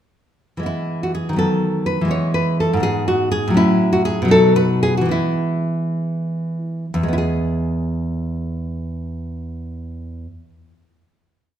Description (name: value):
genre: classical, baroque-style dance for nylon-string guitar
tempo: 60-84 BPM (dotted quarters)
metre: 6/8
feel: rubato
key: E major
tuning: A4 = 442 Hz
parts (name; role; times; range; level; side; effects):
- nylon-string guitar; solo; 0.6-10.5 s; E2 to C#5; -17 LUFS; equal; none
room: wet recital hall reverb, RT60 1.5 s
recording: minimal, uncompressed stereo recording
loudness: -17 LUFS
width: side -10 dB against mid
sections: 0.7-6.9 A section; 6.9-10.7 final chord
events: slowing down 2.8-6.9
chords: 0.7 E; 1.4 B7/D#; 2.1 E; 2.8 G#m; 3.6 F#m/A; 4.3 B; 5.1 E